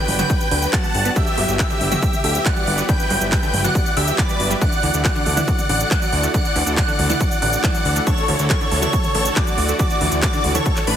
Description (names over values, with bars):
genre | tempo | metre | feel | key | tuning
uplifting trance | 139 BPM | 4/4 | straight | unclear | A4 = 440 Hz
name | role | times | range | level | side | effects
big supersaw lead | melody | 0.0-11.0 s | D4 to A5 | -23 LUFS | equal | sidechain pumping, ping-pong delay
plucky unison lead | second line | 0.0-11.0 s | B5 to A6 | -26 LUFS | equal | phaser, analog chorus, sidechain pumping
lush unison pad | sustained chords | 0.1-10.9 s | E3 to G4 | -28 LUFS | equal | chorus, sidechain pumping
fat analog bass | bass | 0.1-11.0 s | G1 to D2 | -22 LUFS | equal | sidechain pumping
techno drum kit | drums | 0.1-11.0 s | handclaps, hi-hat, shaker, toms | -24 LUFS | equal | sidechain pumping on hats, sidechain pumping on perc, sidechain pumping on toms
analog pluck | arpeggios | 0.2-10.9 s | D3 to D4 | -29 LUFS | right 3 dB | chorus, sidechain pumping, ping-pong delay
electronic kick drum | drums | 0.3-10.7 s | none | -20 LUFS | equal | overdrive
room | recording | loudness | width
light reverb, digital ambience | heavily compressed radio sound, multiband compression | -16 LUFS | side -9 dB against mid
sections
0.0-11.0 A section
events
none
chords
0.0 Gmaj7; 4.6 Dadd9